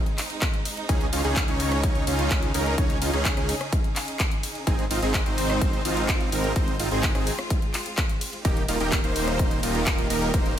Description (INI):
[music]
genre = EDM, festival progressive house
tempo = 127 BPM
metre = 4/4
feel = straight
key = Ab major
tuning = A4 = 440 Hz
[part]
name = clear symphonic string section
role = sustained chords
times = 0.0-10.6 s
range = Db3 to Bb4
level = -34 LUFS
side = equal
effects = sidechain pumping
[part]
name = pop drum kit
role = drums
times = 0.1-10.6 s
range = handclaps, hi-hat, ride cymbal, rim click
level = -30 LUFS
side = left 1 dB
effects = studio reverb
[part]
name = electronic kick drum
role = drums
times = 0.4-10.4 s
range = none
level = -25 LUFS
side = equal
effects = studio reverb
[part]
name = dense compressed supersaw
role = riff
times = 0.9-10.5 s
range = Bb3 to Db5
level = -27 LUFS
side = right 1 dB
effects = sidechain pumping, tape echo
[part]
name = detuned saw bass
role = bass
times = 0.9-10.6 s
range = Eb1 to Db2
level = -29 LUFS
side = equal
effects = sidechain pumping
[sound]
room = little or no reverb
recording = none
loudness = -22 LUFS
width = side -10 dB against mid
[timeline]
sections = 0.0-10.6 A section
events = none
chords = 0.0 Ab; 0.9 Dbsus2; 4.7 Ab; 8.4 Eb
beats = 0.42 | 0.89 1.36 1.83 2.31 | 2.78 3.25 3.73 4.20 | 4.67 5.14 5.62 6.09 | 6.56 7.03 7.50 7.98 | 8.45 8.92 9.39 9.87 | 10.34